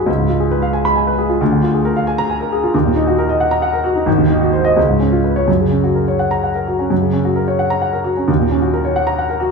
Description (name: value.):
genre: classical, virtuoso piano study.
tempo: 88 BPM (dotted quarters).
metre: 6/8.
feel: rubato.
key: F# major.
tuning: A4 = 441 Hz.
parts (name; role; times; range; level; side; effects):
warm grand piano; solo; 0.0-9.5 s; G#1 to B5; -13 LUFS; equal; none.
room: wet recital hall reverb, RT60 1.6 s.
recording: none.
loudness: -13 LUFS.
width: side -4 dB against mid.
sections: 0.0-6.9 A section; 6.9-9.5 A section.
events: none.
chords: 0.1 C#7; 1.4 A#7/D; 2.7 D#m; 4.1 G#7; 4.8 C#7; 5.5 F#; 8.3 D#m7.